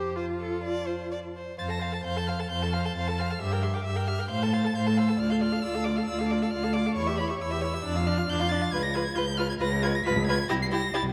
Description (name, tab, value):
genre	quick classical-period movement for string quartet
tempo	135 BPM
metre	4/4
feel	rubato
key	F major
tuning	A4 = 439 Hz
part	rich violin	melody	0.0-11.0 s	A5 to C7	-36 LUFS	equal	none
part	clear violin	second line	0.0-11.0 s	G4 to A5	-36 LUFS	equal	none
part	clear viola	accompaniment	0.0-11.0 s	D4 to C5	-35 LUFS	equal	none
part	rich cello	bass	0.0-11.1 s	C2 to A2	-31 LUFS	equal	none
room	wet concert hall reverb, RT60 1.9 s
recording	none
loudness	-28 LUFS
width	mono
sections	0.0-1.6 A section; 1.6-11.1 A section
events	none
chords	0.0 F; 3.4 Edim/G; 4.3 F/A; 5.2 Dm; 7.0 C#dim/E; 7.9 Dm/F; 8.7 Db7; 10.5 C